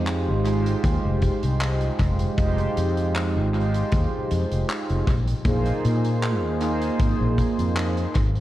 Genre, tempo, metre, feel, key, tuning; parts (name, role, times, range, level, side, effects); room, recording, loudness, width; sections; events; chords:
vaporwave; 78 BPM; 4/4; swing 53% on 16ths; A4 = 439 Hz
mellow synth brass; accompaniment; 0.0-8.2 s; Ab3 to C5; -25 LUFS; right 2 dB; wide subtle chorus, tape echo
fretless electric bass; bass; 0.0-8.4 s; F1 to Bb2; -24 LUFS; equal; wide subtle chorus
big rock drum kit; drums; 0.1-8.4 s; handclaps, hi-hat; -34 LUFS; equal; tape echo
kick drum; drums; 0.8-8.3 s; -25 LUFS; equal
light reverb, small room ambience; echo-heavy mix, cassette tape; -20 LUFS; side -14 dB against mid
0.0-8.4 A section
0.0 Fm9; 5.1 Bb9sus4